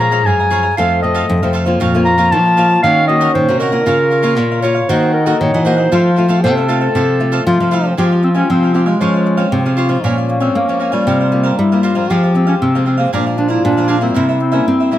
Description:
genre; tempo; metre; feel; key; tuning
samba; 116 BPM; 4/4; straight; F harmonic minor from 8.0 s; A4 = 440 Hz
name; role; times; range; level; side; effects
mellow clarinet; melody; 0.0-15.0 s; G3 to Bb5; -16 LUFS; equal; slapback echo, plate reverb
warm trombone; second line; 0.0-15.0 s; C4 to A4; -20 LUFS; left 4 dB; none
cavaquinho; accompaniment; 0.0-15.0 s; Eb4 to Bb5; -22 LUFS; right 5 dB; none
nylon-string guitar; accompaniment; 0.0-15.0 s; F2 to Ab4; -20 LUFS; left 2 dB; none
nylon-string guitar; bass; 0.0-15.0 s; F2 to C4; -16 LUFS; equal; none
room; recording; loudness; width
light reverb; close, detailed microphones; -11 LUFS; side -12 dB against mid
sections
0.0-8.0 A section; 8.0-15.0 B section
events
none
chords
0.0 Bbm7; 0.8 F; 1.8 Bbm/F; 2.8 Ebm7; 3.9 Bbm/Db; 4.9 Ebm; 5.9 F; 8.0 Fmadd9; 9.0 Dbmaj7/F; 10.0 Bbm7; 11.1 C7sus4; 12.1 Fm; 13.1 Bb7; 14.2 C7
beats
0.26 0.78 1.29 | 1.81 2.32 2.84 3.35 | 3.87 4.38 4.90 5.41 | 5.93 6.44 6.96 7.47 | 7.98 8.50 9.01 9.53 | 10.04 10.56 11.07 11.59 | 12.10 12.62 13.13 13.65 | 14.16 14.68

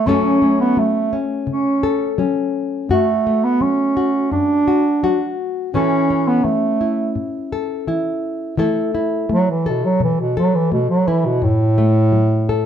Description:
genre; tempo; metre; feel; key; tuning
folk; 84 BPM; 4/4; straight; unclear; A4 = 439 Hz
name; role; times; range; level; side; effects
warm bass clarinet; melody; 0.0-12.7 s; A2 to D4; -16 LUFS; right 2 dB; plate reverb
nylon-string guitar; accompaniment; 0.0-12.7 s; F#2 to A4; -20 LUFS; left 4 dB; none
room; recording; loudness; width
moderate large studio reverb, RT60 0.9 s; dark, warm production; -15 LUFS; side -9 dB against mid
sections
0.0-8.6 A section; 8.6-12.7 B section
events
bass clarinet solo 8.6-12.7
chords
0.1 F#m; 2.9 D/F#; 5.7 A; 8.6 Esus4; 11.4 F#m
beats
| 0.07 0.78 1.49 2.20 | 2.91 3.62 4.33 5.04 | 5.75 6.46 7.17 7.88 | 8.59 9.30 10.01 10.72 | 11.43 12.13

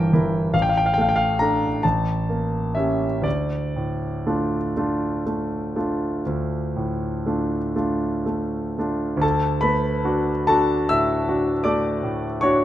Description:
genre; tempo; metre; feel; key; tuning
classical, romantic nocturne for solo piano; 39-55 BPM (dotted quarters); 12/8; rubato; D minor, D major from 9.2 s; A4 = 440 Hz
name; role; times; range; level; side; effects
clear concert grand piano; solo; 0.0-12.6 s; G1 to E6; -20 LUFS; equal; none
room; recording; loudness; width
light reverb; close, detailed microphones; -20 LUFS; side -12 dB against mid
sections
0.0-9.2 A section; 9.2-12.6 B section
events
none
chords
0.0 Edim/G; 0.5 D5/A; 1.8 A7b9; 3.2 Dm; 9.2 D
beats
0.54 1.83 | 3.24 4.76 6.25 7.76 | 9.23 10.49 11.66

